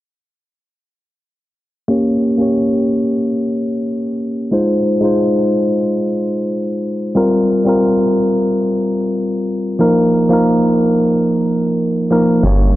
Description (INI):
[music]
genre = organic downtempo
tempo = 91 BPM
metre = 4/4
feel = swing 53% on 16ths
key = unclear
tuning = A4 = 439 Hz
[part]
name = tine electric piano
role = accompaniment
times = 1.9-12.8 s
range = F3 to Db5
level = -13 LUFS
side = equal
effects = low-pass filter, tape echo
[part]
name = warbly tape-like pad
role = sustained chords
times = 12.4-12.8 s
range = G3 to Bb4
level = -26 LUFS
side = right 5 dB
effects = chorus, built-in reverb
[part]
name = woody FM bass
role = bass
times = 12.4-12.8 s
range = G1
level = -12 LUFS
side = equal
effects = transformer saturation
[part]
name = shaker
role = drums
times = 12.4-12.7 s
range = none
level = -52 LUFS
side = left 1 dB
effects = none
[sound]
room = light reverb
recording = dry, gritty hardware recording, low-pass filter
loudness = -13 LUFS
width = side -15 dB against mid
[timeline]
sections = 1.9-12.8 A section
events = filter sweep on tine electric piano 1.9-12.8; filter sweep 1.9-12.8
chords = 1.9 Gdim; 4.5 Fm7; 7.2 C7sus4; 9.8 Ebsus2